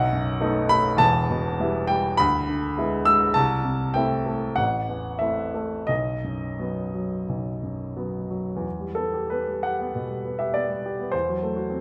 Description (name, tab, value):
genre	classical, romantic character piece for solo piano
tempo	85-106 BPM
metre	4/4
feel	rubato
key	E minor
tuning	A4 = 441 Hz
part	warm grand piano	solo	0.0-11.8 s	E1 to E6	-25 LUFS	equal	none
room	moderate recital hall reverb, RT60 1.7 s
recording	none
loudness	-25 LUFS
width	mono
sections	0.0-8.6 A section; 8.6-11.8 B section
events	none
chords	0.0 B7; 1.0 Em; 2.2 E7/D; 3.4 Am/C; 4.6 Am; 5.9 B; 8.6 Em; 11.1 F#m7b5/E